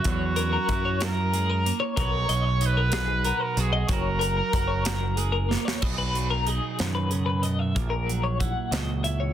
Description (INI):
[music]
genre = math rock and midwest emo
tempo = 62 BPM (dotted quarters)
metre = 6/8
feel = straight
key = B major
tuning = A4 = 442 Hz
[part]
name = bright trumpet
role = melody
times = 0.0-5.5 s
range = F#4 to C#5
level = -29 LUFS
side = right 2 dB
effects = slapback echo, plate reverb
[part]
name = twelve-string electric guitar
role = accompaniment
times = 0.0-9.3 s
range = A#2 to B4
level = -31 LUFS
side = right 9 dB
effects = lush chorus
[part]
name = twelve-string electric guitar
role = arpeggios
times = 0.0-9.3 s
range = G#4 to F#5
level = -30 LUFS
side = left 6 dB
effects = tremolo, plate reverb
[part]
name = modern studio drum kit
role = drums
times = 0.0-9.2 s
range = crash cymbal, hi-hat, kick drum, snare drum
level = -30 LUFS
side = equal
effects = none
[part]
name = growling picked electric bass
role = bass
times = 0.1-9.3 s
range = F#1 to F#2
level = -26 LUFS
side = equal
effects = overdrive
[sound]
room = light reverb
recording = dense, heavily limited modern master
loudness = -23 LUFS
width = side -10 dB against mid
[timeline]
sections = 0.0-5.8 A section; 5.8-9.3 B section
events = drum fill 5.5-5.8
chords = 0.0 F#7; 2.0 Bmaj7; 3.9 F#add9; 5.8 B6; 7.8 F#7/A#